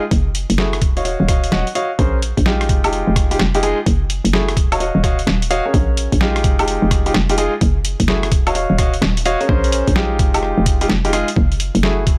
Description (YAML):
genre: UK garage, two-step garage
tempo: 128 BPM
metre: 4/4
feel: swing 64% on 16ths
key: unclear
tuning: A4 = 438 Hz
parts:
  - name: hollow knocking FM bass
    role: bass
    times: 0.1-12.2 s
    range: Eb1 to Bb1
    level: -21 LUFS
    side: equal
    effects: none
  - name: boom bap sampler-style drum kit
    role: drums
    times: 0.1-12.2 s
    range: hi-hat, rim click, snare drum, woodblock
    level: -24 LUFS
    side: equal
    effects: studio reverb
  - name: electronic kick drum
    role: drums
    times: 0.1-12.2 s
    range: none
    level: -20 LUFS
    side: equal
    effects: studio reverb
  - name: warm grand piano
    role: stabs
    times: 0.6-12.0 s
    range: Ab3 to Gb5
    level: -22 LUFS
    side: equal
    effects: tape echo
room: little or no reverb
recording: none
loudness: -17 LUFS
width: mono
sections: 0.0-9.5 A section; 9.5-12.2 B section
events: kick drops out 9.0-9.5; band accent 9.0; drop 9.5-12.2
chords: 0.1 Gbm9; 0.8 Ebm9; 2.0 Bbm9; 2.7 Fm9; 3.9 Gbm9; 4.6 Ebm9; 5.7 Bbm7; 6.4 Fm9; 7.6 Gbm9; 8.3 Ebm9; 9.5 Bbm9; 10.2 Fm9; 11.4 Gbm9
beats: | 0.11 0.58 1.05 1.52 | 1.99 2.46 2.93 3.40 | 3.86 4.33 4.80 5.27 | 5.74 6.21 6.68 7.14 | 7.61 8.08 8.55 9.02 | 9.49 9.96 10.43 10.89 | 11.36 11.83